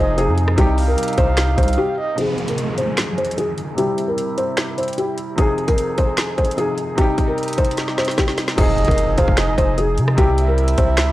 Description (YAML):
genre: hip hop, trap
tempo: 150 BPM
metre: 4/4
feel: half-time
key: F minor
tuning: A4 = 441 Hz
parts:
  - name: felt-muted upright piano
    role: melody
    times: 0.0-10.9 s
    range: G4 to C5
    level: -22 LUFS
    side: left 2 dB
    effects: low-pass filter, analog delay
  - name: breathy flute-like synth lead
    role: second line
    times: 0.0-2.2, 8.6-11.1 s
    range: Eb5 to F5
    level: -25 LUFS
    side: right 3 dB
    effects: chorus, analog delay
  - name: bright baby grand piano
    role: accompaniment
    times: 0.0-11.1 s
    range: C3 to Ab4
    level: -26 LUFS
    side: left 1 dB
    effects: low-pass filter
  - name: clear brass ensemble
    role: sustained chords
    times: 0.0-11.1 s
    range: F2 to Ab4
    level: -27 LUFS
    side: right 1 dB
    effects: low-pass filter
  - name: long sustained 808-style bass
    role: bass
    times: 0.0-1.8, 8.6-11.1 s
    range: F1 to C3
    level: -18 LUFS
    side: equal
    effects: none
  - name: trap drum kit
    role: drums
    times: 0.2-11.1 s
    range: crash cymbal, finger snaps, hi-hat, kick drum, rim click, snare drum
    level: -20 LUFS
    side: equal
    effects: none
  - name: downlifter and impact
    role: sound effects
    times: 2.2-5.4, 8.6-10.2 s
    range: none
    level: -27 LUFS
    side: right 1 dB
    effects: none
room: little or no reverb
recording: dry, gritty hardware recording, cassette tape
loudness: -16 LUFS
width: side -16 dB against mid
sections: 0.0-2.2 A section; 2.2-8.6 B section; 8.6-11.1 A section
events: break 1.8-2.2; filter sweep 2.2-8.6; drum fill 7.8-8.6; impact 8.6-10.2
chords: 0.0 Fm7; 0.6 Cm; 2.2 Fm7; 3.8 C; 5.4 Fm7; 7.0 Cm; 8.6 Fm7; 10.2 C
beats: 0.18 | 0.58 0.98 1.38 1.78 | 2.18 2.58 2.98 3.38 | 3.78 4.18 4.58 4.98 | 5.38 5.78 6.18 6.58 | 6.98 7.38 7.78 8.18 | 8.58 8.98 9.38 9.78 | 10.18 10.58 10.98